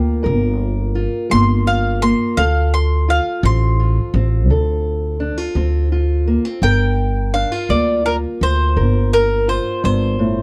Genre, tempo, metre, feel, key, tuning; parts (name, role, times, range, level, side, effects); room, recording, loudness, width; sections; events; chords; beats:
acoustic country blues, solo or duo; 56 BPM (dotted quarters); 12/8; straight; G minor; A4 = 441 Hz
mandolin; melody; 0.0-10.4 s; Bb4 to C6; -22 LUFS; equal
fingerpicked steel-string acoustic guitar; accompaniment; 0.0-10.4 s; G2 to Bb4; -24 LUFS; equal
upright bass; bass; 0.0-10.4 s; G1 to D2; -19 LUFS; equal
small room ambience; dry, close 1970s-style studio recording; -17 LUFS; mono
0.0-6.6 A section; 6.6-10.4 B section
mandolin solo 0.0-6.6
0.0 Gm7; 2.4 D7#9; 6.6 Gm7
0.25 1.31 | 2.38 3.44 4.50 5.57 | 6.63 7.70 8.77 9.84